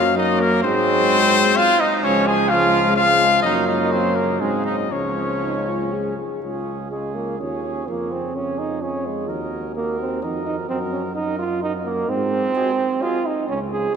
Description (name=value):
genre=classical, brass quintet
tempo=128 BPM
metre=3/4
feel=rubato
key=Db major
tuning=A4 = 438 Hz
part: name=mellow trumpet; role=melody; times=0.0-13.2 s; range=Ab4 to Ab5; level=-22 LUFS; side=left 5 dB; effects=none
part: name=warm trumpet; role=second line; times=0.0-13.2 s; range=Ab3 to Bb4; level=-25 LUFS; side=right 5 dB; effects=none
part: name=bright trombone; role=accompaniment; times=0.0-13.9 s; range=F3 to Ab4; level=-24 LUFS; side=right 3 dB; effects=none
part: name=mellow French horn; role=accompaniment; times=0.0-13.2 s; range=Ab3 to Ab4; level=-28 LUFS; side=left 4 dB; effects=none
part: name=warm tuba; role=bass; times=0.0-13.9 s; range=Db2 to Ab2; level=-26 LUFS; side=right 2 dB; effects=none
room=wet cathedral reverb, RT60 5.8 s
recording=none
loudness=-18 LUFS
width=side -6 dB against mid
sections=0.0-6.4 A section; 6.4-14.0 A section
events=none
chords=0.0 Ebmadd9/Gb; 0.6 Ab7; 2.0 Db; 3.4 Gb6; 4.4 Ab7; 4.9 Db; 7.9 Db/F; 9.3 Ebm; 10.7 Ebm/Gb; 12.1 Ab7